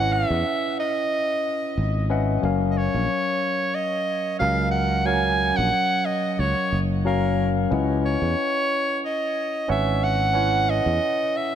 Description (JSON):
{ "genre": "sunset chillout", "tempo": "91 BPM", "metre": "4/4", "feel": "swing 53% on 16ths", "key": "F# major", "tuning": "A4 = 442 Hz", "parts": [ { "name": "breathy soprano saxophone", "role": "melody", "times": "0.0-11.6 s", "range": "A#4 to G#5", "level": "-24 LUFS", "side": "equal", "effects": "ping-pong delay" }, { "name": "tine electric piano", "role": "accompaniment", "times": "0.0-11.6 s", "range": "F#3 to F#5", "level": "-25 LUFS", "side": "moving between left 7 dB and right 7 dB", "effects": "auto-pan, ping-pong delay" }, { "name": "sustaining fretless electric bass", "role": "bass", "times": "0.0-11.0 s", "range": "F#1 to E2", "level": "-24 LUFS", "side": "equal", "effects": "none" } ], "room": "moderate lush hall reverb, RT60 3.0 s", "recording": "none", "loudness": "-20 LUFS", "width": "side -9 dB against mid", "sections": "0.0-11.6 A section", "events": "none", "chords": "0.0 C#m11; 2.4 F#maj7; 7.7 C#m11" }